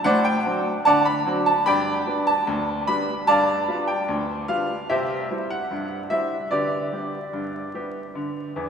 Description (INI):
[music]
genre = ragtime piano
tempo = 74 BPM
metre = 2/4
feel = straight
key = G major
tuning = A4 = 438 Hz
[part]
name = bright upright piano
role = solo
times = 0.0-8.7 s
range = D2 to B5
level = -21 LUFS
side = equal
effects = none
[sound]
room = wet cathedral reverb, RT60 5.8 s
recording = recorded in a church or concert hall, vinyl crackle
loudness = -21 LUFS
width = side -6 dB against mid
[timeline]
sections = 0.0-8.7 A section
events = none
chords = 0.0 D7/A; 1.7 G; 3.3 G7; 4.9 C; 6.5 G/D; 8.2 N.C.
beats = | 0.04 0.85 | 1.66 2.47 | 3.28 4.09 | 4.90 5.71 | 6.53 7.35 | 8.17